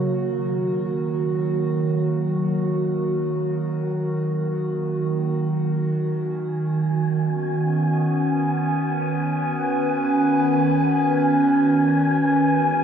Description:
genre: ambient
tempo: free time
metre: none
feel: none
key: unclear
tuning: A4 = 440 Hz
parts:
  - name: warbly tape-like pad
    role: sustained chords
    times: 0.0-12.8 s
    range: D#3 to B4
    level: -20 LUFS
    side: right 1 dB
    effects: chorus, built-in reverb, phaser, shimmer reverb
  - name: wind-like tuned noise texture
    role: texture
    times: 6.5-12.8 s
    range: G#5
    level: -25 LUFS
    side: equal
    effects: built-in reverb, shimmer reverb
room: wet cathedral reverb, RT60 4.8 s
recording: dark, warm production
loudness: -19 LUFS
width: side -8 dB against mid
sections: 0.0-12.8 A section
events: none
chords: 0.0 D#m; 6.1 Badd9; 12.2 C#m

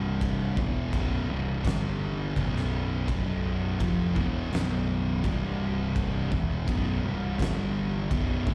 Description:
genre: stoner and doom metal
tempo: 84 BPM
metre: 4/4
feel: straight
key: B minor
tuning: A4 = 441 Hz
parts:
  - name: thick fuzz guitar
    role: riff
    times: 0.0-8.5 s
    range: B1 to G3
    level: -34 LUFS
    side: equal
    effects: distortion, slapback echo
  - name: thick fuzz guitar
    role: riff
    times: 0.0-8.5 s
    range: B1 to G3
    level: -35 LUFS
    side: equal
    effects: distortion, slapback echo
  - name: fuzz picked electric bass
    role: bass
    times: 0.0-8.5 s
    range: B0 to G1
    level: -34 LUFS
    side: equal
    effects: overdrive
  - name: oversized low-tuned drum kit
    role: drums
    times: 0.2-8.5 s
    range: crash cymbal, kick drum, snare drum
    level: -34 LUFS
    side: equal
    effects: none
room: small room reverb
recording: live gig heard through the venue's PA, club reverb, lossy compression artefacts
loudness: -28 LUFS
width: mono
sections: 0.0-8.5 A section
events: none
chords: 0.0 C5; 0.6 B5; 1.6 G5; 2.4 B5; 5.2 C5; 6.3 B5; 7.4 G5

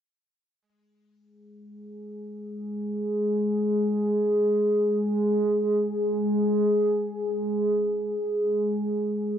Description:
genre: trip hop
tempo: free time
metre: none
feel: none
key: unclear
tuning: A4 = 440 Hz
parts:
  - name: deep dark ambient pad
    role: sustained chords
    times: 2.0-9.4 s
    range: G#4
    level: -23 LUFS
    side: equal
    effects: chorus, built-in reverb
room: moderate echo chamber reverb, RT60 1.3 s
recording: dry, gritty hardware recording, cassette tape, nothing above 7.7 kHz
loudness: -23 LUFS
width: side -9 dB against mid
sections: 0.5-9.4 A section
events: none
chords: none

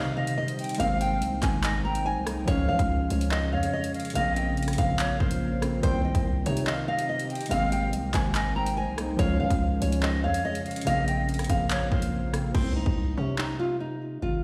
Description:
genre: hip hop, drill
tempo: 143 BPM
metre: 4/4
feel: half-time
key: C phrygian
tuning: A4 = 441 Hz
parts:
  - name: nylon-string guitar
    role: melody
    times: 0.0-14.4 s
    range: C4 to Bb5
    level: -33 LUFS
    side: equal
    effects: digital delay
  - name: breathy silver concert flute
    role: second line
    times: 0.0-12.5 s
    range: Db5 to G5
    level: -37 LUFS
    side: equal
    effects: digital delay
  - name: warbly lo-fi synth keys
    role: accompaniment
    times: 0.0-12.6 s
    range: Db3 to Eb4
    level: -34 LUFS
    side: equal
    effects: chorus
  - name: ethereal airy pad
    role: sustained chords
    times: 0.1-12.5 s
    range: C3 to F5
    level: -40 LUFS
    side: equal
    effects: ensemble chorus, built-in reverb
  - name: growling 808-style bass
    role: bass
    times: 0.0-14.4 s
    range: Ab1 to F3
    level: -32 LUFS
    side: equal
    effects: none
  - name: drill drum kit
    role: drums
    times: 0.3-13.5 s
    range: crash cymbal, handclaps, hi-hat, kick drum, rim click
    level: -32 LUFS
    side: equal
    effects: none
room: little or no reverb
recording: played on a big sound system in a bare room, stone room reverb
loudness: -27 LUFS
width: mono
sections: 0.0-12.5 A section; 12.5-14.4 B section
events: hi-hats muted 12.5-14.4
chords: 0.0 Cm; 0.8 Abadd9; 2.5 Db; 4.2 Bbmadd9; 5.8 Cm; 7.5 Abadd9; 9.2 Db; 10.9 Bbmadd9; 12.5 Cm

